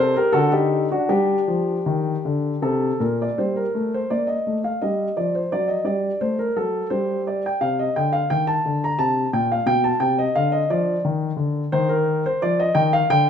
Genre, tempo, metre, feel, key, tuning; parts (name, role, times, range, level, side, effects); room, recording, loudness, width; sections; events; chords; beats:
classical, baroque-style suite movement for grand piano; 76-89 BPM; 3/4; rubato; G minor; A4 = 440 Hz
warm concert grand piano; solo; 0.0-13.3 s; Bb2 to Bb5; -19 LUFS; left 1 dB
moderate recital hall reverb, RT60 1.6 s; -19 LUFS; side -8 dB against mid
0.0-3.4 A section; 3.4-13.3 B section
0.3 D; 1.1 Gm; 5.5 F#dim7; 6.9 N.C.; 7.6 Cm; 9.7 B7alt; 11.0 N.C.; 11.7 Ebmaj13
0.33 | 1.09 1.87 2.63 | 3.38 4.10 4.80 | 5.50 6.20 6.90 | 7.61 8.30 8.99 | 9.68 10.35 11.04 | 11.73 12.41 13.10